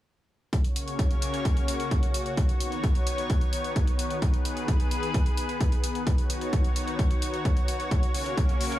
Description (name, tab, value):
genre	EDM, festival progressive house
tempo	130 BPM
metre	4/4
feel	straight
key	B major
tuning	A4 = 440 Hz
part	lush unison pad	sustained chords	0.5-8.8 s	C#3 to C#5	-31 LUFS	left 1 dB	chorus, sidechain pumping
part	electronic hi-hat	drums	0.5-8.8 s	none	-37 LUFS	left 1 dB	none
part	electronic kick drum	drums	0.5-8.5 s	none	-25 LUFS	equal	none
room	digital ambience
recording	small room ambience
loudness	-24 LUFS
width	side -14 dB against mid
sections	0.5-8.8 A section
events	none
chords	0.5 F#; 2.4 Badd9; 4.2 G#m; 6.1 Badd9; 7.9 F#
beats	| 0.53 0.99 1.45 1.91 | 2.38 2.84 3.30 3.76 | 4.22 4.68 5.14 5.61 | 6.07 6.53 6.99 7.45 | 7.91 8.38